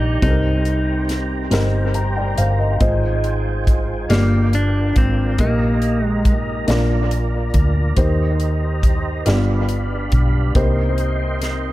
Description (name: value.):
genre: slow gospel.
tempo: 46 BPM (dotted quarters).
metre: 6/8.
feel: straight.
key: Eb major.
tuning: A4 = 440 Hz.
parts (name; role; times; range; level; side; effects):
clean electric guitar; melody; 0.0-6.3 s; Bb3 to Eb4; -22 LUFS; equal; dub echo.
dark upright piano; accompaniment; 0.0-11.7 s; G2 to Bb5; -23 LUFS; left 1 dB; dub echo.
tonewheel organ; sustained chords; 0.0-11.7 s; F4 to C6; -28 LUFS; right 3 dB; overdrive, chorus vibrato, slow rotary speaker.
hollow-body short-scale fingered electric bass; bass; 0.0-11.7 s; G1 to Eb2; -19 LUFS; equal; none.
crisp fusion drum kit; drums; 0.2-11.6 s; hi-hat, kick drum, snare drum; -20 LUFS; equal; none.
room: small room ambience.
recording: echo-heavy mix.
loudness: -16 LUFS.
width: side -16 dB against mid.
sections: 0.0-11.7 A section.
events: upright piano fill 1.5-2.8.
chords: 0.2 Cm7; 2.8 Fm7/Ab; 4.1 Gm7; 5.4 Eb/Bb; 6.7 Bb; 8.0 Eb6; 9.3 G7; 10.6 Cm7.